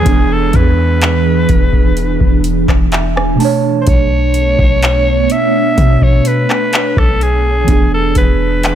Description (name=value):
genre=contemporary R&B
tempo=63 BPM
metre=4/4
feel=straight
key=unclear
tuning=A4 = 441 Hz
part: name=raspy alto saxophone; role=melody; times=0.0-8.8 s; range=G#4 to E5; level=-17 LUFS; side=equal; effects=ping-pong delay
part: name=muted felt-like synth keys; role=accompaniment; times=0.0-8.8 s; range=B2 to A5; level=-18 LUFS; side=right 5 dB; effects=chorus
part: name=glassy FM pad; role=sustained chords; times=0.0-8.8 s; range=E3 to C#5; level=-18 LUFS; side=right 2 dB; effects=ensemble chorus, built-in reverb, phaser
part: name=warm 808-style bass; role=bass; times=0.0-8.8 s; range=E1 to B2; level=-15 LUFS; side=equal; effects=none
part: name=downlifter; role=sound effects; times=0.0-3.9 s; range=none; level=-33 LUFS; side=equal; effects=none
part: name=booming analog drum machine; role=drums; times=0.1-8.8 s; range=handclaps, hi-hat, kick drum, rim click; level=-13 LUFS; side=equal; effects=none
room=digital ambience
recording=none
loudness=-10 LUFS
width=side -10 dB against mid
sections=0.0-8.8 A section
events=synth keys fill 2.4-3.9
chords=0.1 E7; 3.4 Bm9; 7.7 E7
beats=| 0.06 1.01 1.97 2.92 | 3.87 4.82 5.78 6.73 | 7.68 8.63